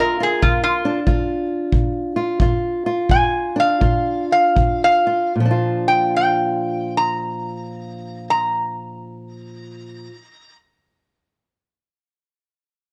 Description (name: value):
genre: acoustic country blues, solo or duo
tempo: 74-94 BPM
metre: 4/4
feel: swing 64% on 8ths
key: Bb major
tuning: A4 = 440 Hz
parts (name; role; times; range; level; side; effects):
- metal-body resonator slide guitar; melody; 0.0-10.6 s; F4 to Bb5; -20 LUFS; equal; none
- fingerpicked old ladder-braced acoustic guitar; accompaniment; 0.0-10.2 s; Bb2 to Bb4; -24 LUFS; equal; none
- kick drum; drums; 0.4-4.8 s; none; -21 LUFS; equal; none
room: moderate studio reverb, RT60 0.7 s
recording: none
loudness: -19 LUFS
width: mono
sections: 0.0-5.4 A section; 5.4-8.6 B section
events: slowing down 0.0-5.4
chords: 0.0 Bb